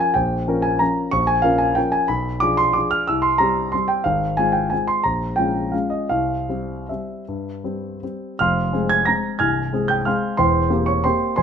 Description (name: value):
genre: classical, piano waltz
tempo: 148-197 BPM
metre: 3/4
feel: rubato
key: F minor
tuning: A4 = 440 Hz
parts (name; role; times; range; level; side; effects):
- warm concert grand piano; solo; 0.0-11.4 s; C1 to Bb6; -18 LUFS; equal; none
room: light reverb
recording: minimal, uncompressed stereo recording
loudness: -18 LUFS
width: side -7 dB against mid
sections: 0.0-8.4 A section; 8.4-11.4 B section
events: none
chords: 0.0 Bbm; 2.1 Bdim7; 3.1 C5; 4.1 Fm/Ab; 5.0 Bbm7; 6.1 C; 8.4 Fm; 10.4 C7/E